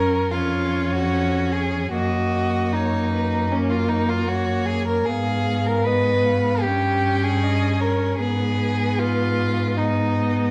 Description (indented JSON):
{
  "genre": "classical, slow romantic movement for string quartet",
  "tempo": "76 BPM",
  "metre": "4/4",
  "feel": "rubato",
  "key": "F# major",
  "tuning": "A4 = 440 Hz",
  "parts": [
    { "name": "warm violin", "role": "second line", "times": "0.0-10.5 s", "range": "C#4 to B4", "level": "-26 LUFS", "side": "equal", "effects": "none" },
    { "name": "rich viola", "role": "accompaniment", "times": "0.0-10.5 s", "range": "A#3 to C#4", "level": "-27 LUFS", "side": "equal", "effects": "none" },
    { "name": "rich cello", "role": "bass", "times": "0.0-10.5 s", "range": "E#2 to G#2", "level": "-26 LUFS", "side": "equal", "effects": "none" },
    { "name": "rich violin", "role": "melody", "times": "0.3-10.5 s", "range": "A#4 to G5", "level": "-32 LUFS", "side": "equal", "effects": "none" }
  ],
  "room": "light reverb",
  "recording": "vinyl crackle",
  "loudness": "-22 LUFS",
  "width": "mono",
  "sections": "0.0-10.5 A section",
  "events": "none",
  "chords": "0.3 C#/E#; 1.9 F#; 5.1 G#m; 6.6 Gdim; 8.2 G#m"
}